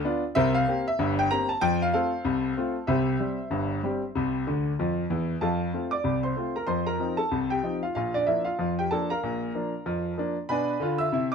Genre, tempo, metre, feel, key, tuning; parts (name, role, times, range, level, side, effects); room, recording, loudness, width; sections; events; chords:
ragtime piano; 95 BPM; 2/4; swing 59% on 16ths; F major; A4 = 440 Hz
clear grand piano; solo; 0.0-11.3 s; G1 to E6; -24 LUFS; equal
moderate studio reverb, RT60 0.6 s; -24 LUFS; side -6 dB against mid
0.0-5.4 A section; 5.4-11.3 B section
grand piano fill 4.5-5.4
0.4 C5; 1.6 F; 2.9 C; 5.4 F; 6.7 F7; 8.0 Bb; 10.5 Bdim7